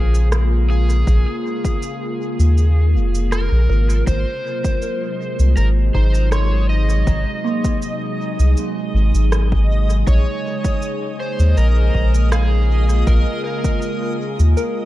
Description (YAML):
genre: ambient dub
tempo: 80 BPM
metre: 4/4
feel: straight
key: Bb minor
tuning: A4 = 440 Hz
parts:
  - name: overdriven slide guitar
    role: melody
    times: 0.0-14.2 s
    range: Ab4 to Eb5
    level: -27 LUFS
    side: equal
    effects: dub echo
  - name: airy breathy pad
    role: sustained chords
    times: 0.0-14.9 s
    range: C3 to Ab4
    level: -25 LUFS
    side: equal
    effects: chorus
  - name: soft synth bell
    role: arpeggios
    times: 0.0-14.9 s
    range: Bb3 to C6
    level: -30 LUFS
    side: right 1 dB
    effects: chorus, phaser, dub echo
  - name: soft dub sub bass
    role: bass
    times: 0.0-14.5 s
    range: F1 to Eb2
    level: -14 LUFS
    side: equal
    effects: none
  - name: electronic cabasa and rim click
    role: drums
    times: 0.1-14.7 s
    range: none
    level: -30 LUFS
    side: right 1 dB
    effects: dub echo
  - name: electronic kick drum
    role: drums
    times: 1.1-13.8 s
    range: none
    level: -20 LUFS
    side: equal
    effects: overdrive
  - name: backwards swelling texture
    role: texture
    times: 5.1-14.9 s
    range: Eb5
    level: -32 LUFS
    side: equal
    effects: built-in reverb
room: digital ambience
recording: echo-heavy mix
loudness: -15 LUFS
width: side -15 dB against mid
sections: 0.0-14.9 A section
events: kick drops out 2.6-4.1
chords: 0.0 Bbm7; 4.1 Ab7; 10.1 Bbm7